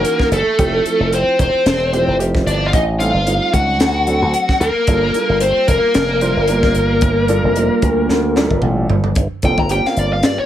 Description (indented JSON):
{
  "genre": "electric jazz fusion",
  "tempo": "112 BPM",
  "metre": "4/4",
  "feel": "swing 55% on 16ths",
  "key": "G minor",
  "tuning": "A4 = 440 Hz",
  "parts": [
    { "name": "smooth overdriven lead guitar", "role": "melody", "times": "0.0-10.5 s", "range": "A4 to Bb5", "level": "-17 LUFS", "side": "left 2 dB", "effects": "none" },
    { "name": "biting overdriven guitar", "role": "second line", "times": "0.0-8.6 s", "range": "A3 to F#4", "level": "-22 LUFS", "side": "right 2 dB", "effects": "tremolo, slapback echo" },
    { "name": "dark grand piano", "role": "accompaniment", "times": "0.0-10.4 s", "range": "E3 to C5", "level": "-22 LUFS", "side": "right 3 dB", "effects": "none" },
    { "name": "slap bass with an envelope filter", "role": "bass", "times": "0.0-10.4 s", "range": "E1 to G2", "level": "-19 LUFS", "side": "equal", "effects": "none" },
    { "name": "crisp fusion drum kit", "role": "drums", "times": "0.0-10.4 s", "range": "hi-hat, kick drum, snare drum, toms", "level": "-18 LUFS", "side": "equal", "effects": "none" }
  ],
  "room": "moderate studio reverb, RT60 0.6 s",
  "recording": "none",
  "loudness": "-13 LUFS",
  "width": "side -11 dB against mid",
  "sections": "0.0-9.2 A section; 9.2-10.5 B section",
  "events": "drum fill 8.1-9.2; lead electric guitar solo 9.2-10.5",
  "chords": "0.0 F#13; 0.6 Fmaj9; 2.7 Am7b5; 3.8 D7; 4.9 Gm9",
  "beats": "0.04 | 0.58 1.12 1.66 2.19 | 2.73 3.27 3.80 4.34 | 4.88 5.41 5.95 6.49 | 7.02 7.56 8.10 8.63 | 9.17 9.70 10.24"
}